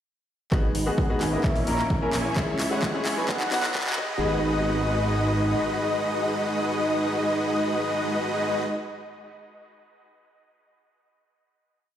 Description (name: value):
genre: EDM, festival progressive house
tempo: 130 BPM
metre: 4/4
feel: straight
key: G# minor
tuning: A4 = 440 Hz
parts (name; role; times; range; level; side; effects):
- clear concert grand piano; accompaniment; 0.5-8.7 s; F#3 to D#5; -31 LUFS; left 2 dB; sidechain pumping, dub echo
- wide unison lead; arpeggios; 0.5-8.6 s; D#5 to A#5; -30 LUFS; left 1 dB; lush chorus, sidechain pumping, dub echo
- dense compressed supersaw; riff; 0.5-8.6 s; G#3 to A#5; -27 LUFS; right 1 dB; sidechain pumping, low-pass filter, dub echo
- fat analog bass; bass; 0.5-5.6 s; G#1 to C#2; -29 LUFS; equal; tube saturation, sidechain pumping
- electronic kick drum; drums; 0.5-4.1 s; none; -25 LUFS; equal; none
- house drum kit; drums; 0.5-4.0 s; handclaps, hi-hat; -32 LUFS; equal; overdrive
- riser; sound effects; 2.1-4.2 s; none; -40 LUFS; right 1 dB; none
room: moderate lush hall reverb, RT60 2.0 s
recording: played on a big sound system in a bare room, stone room reverb, high-pass filter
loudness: -22 LUFS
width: side -10 dB against mid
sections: 0.5-4.2 build; 4.2-7.9 final hit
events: build-up 0.5-4.2; drum fill 0.5-4.2; filter sweep on supersaw synth 0.5-4.2; filter sweep on analog synth lead 0.5-4.2; filter sweep 0.5-4.2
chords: 0.5 G#m7; 1.4 A#dim; 2.4 C#m; 3.3 B; 4.0 G#m7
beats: | 0.52 0.98 1.44 1.90 | 2.36 2.83 3.29 3.75 | 4.21 4.67 5.13 5.59 | 6.06 6.52 6.98 7.44